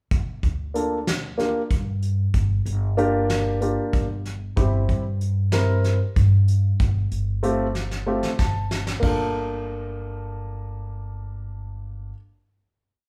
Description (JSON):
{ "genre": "progressive instrumental, band music in an uneven meter", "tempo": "188 BPM (eighths)", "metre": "7/8", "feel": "straight", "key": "G minor", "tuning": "A4 = 441 Hz", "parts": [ { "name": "upright bass", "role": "bass", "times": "0.1-12.1 s", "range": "G1 to G2", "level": "-26 LUFS", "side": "equal", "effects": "none" }, { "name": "soft brush drum kit", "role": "drums", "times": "0.1-9.2 s", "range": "crash cymbal, hi-hat, kick drum, snare drum", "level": "-28 LUFS", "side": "equal", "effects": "none" }, { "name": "dark concert grand piano", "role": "accompaniment", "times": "0.7-12.1 s", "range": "G3 to A5", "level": "-27 LUFS", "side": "equal", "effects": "none" } ], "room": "moderate large studio reverb, RT60 0.9 s", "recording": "band playing live in one room", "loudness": "-23 LUFS", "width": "mono", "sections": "0.1-9.0 groove; 9.0-11.3 final chord", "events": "drum fill 7.8-9.0; grand piano fill 8.1-9.0", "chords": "0.1 Gm7; 4.6 C/G; 6.8 Fadd9/G; 9.0 Gm7", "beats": "| 0.12 0.43 0.75 1.07 1.39 1.71 2.03 | 2.34 2.66 2.98 3.30 3.62 3.94 4.25 | 4.57 4.89 5.21 5.53 5.85 6.17 6.48 | 6.80 7.12 7.44 7.76 8.07 8.39 8.71 | 9.03 9.35 9.66 9.98 10.30 10.62 10.94" }